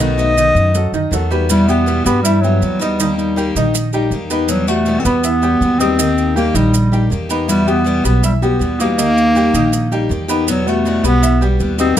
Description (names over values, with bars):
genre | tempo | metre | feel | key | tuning
latin, Cuban son and guajira | 160 BPM | 4/4 | straight | unclear | A4 = 440 Hz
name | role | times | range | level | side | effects
warm clarinet | melody | 0.0-12.0 s | F#3 to D#5 | -16 LUFS | equal | none
nylon-string guitar | second line | 0.0-12.0 s | B3 to B4 | -24 LUFS | left 8 dB | none
picked steel-string acoustic guitar | accompaniment | 0.0-12.0 s | B2 to G4 | -21 LUFS | left 5 dB | none
clear baby grand piano | arpeggios | 0.0-12.0 s | D#3 to D#6 | -21 LUFS | right 3 dB | none
upright bass | bass | 0.0-12.0 s | A#1 to G2 | -18 LUFS | equal | none
maracas | percussion | 0.0-12.0 s | none | -24 LUFS | right 7 dB | none
room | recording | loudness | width
light reverb | close, detailed microphones | -12 LUFS | side -10 dB against mid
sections
0.0-1.5 A section; 1.5-12.0 B section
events
none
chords
0.0 B7; 1.5 Emadd9; 3.0 D#; 4.5 Emadd9; 6.0 D#; 7.5 Emadd9; 9.0 D#; 10.5 Emadd9